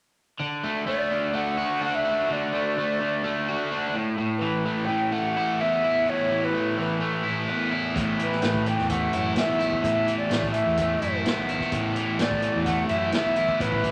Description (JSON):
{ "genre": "psychedelic rock", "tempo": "127 BPM", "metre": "4/4", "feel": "straight", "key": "unclear", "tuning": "A4 = 440 Hz", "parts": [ { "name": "crunchy overdriven guitar", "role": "riff", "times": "0.4-13.9 s", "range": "A2 to F#4", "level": "-28 LUFS", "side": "equal", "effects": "none" }, { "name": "breathy mellow silver concert flute", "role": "melody", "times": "0.9-13.9 s", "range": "B4 to G5", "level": "-28 LUFS", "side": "equal", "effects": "none" }, { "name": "fuzz fingered electric bass", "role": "bass", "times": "8.0-13.8 s", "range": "A1 to A2", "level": "-34 LUFS", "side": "equal", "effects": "overdrive" }, { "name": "vintage drum kit", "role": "drums", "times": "8.0-13.9 s", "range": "hi-hat, kick drum, snare drum", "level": "-32 LUFS", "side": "equal", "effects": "none" } ], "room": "moderate large studio reverb, RT60 1.4 s", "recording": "none", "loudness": "-25 LUFS", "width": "mono", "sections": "0.4-13.9 A section", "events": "none", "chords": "0.4 D; 3.9 Asus2", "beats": "| 0.39 0.87 1.34 1.81 | 2.28 2.76 3.23 3.70 | 4.17 4.64 5.12 5.59 | 6.06 6.53 7.01 7.48 | 7.95 8.42 8.89 9.36 | 9.84 10.31 10.78 11.25 | 11.72 12.19 12.66 13.13 | 13.60" }